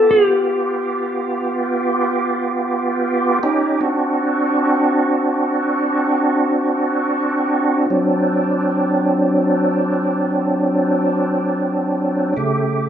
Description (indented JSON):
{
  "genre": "blues",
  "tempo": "free time",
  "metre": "none",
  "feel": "none",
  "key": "D mixolydian",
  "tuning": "A4 = 440 Hz",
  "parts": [
    { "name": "clean lap steel guitar", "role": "melody", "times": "0.0-1.5 s", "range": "G4 to A4", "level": "-16 LUFS", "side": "left 1 dB", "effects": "none" },
    { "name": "bright tonewheel organ", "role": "sustained chords", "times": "0.0-12.9 s", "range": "C#3 to G4", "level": "-16 LUFS", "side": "right 1 dB", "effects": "slow rotary speaker, chorus vibrato" }
  ],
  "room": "wet large studio reverb, RT60 1.1 s",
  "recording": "band playing live in one room",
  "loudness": "-16 LUFS",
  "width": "side -9 dB against mid",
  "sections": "0.0-12.9 A section",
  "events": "none",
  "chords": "0.0 G7; 3.4 D7; 12.4 A7"
}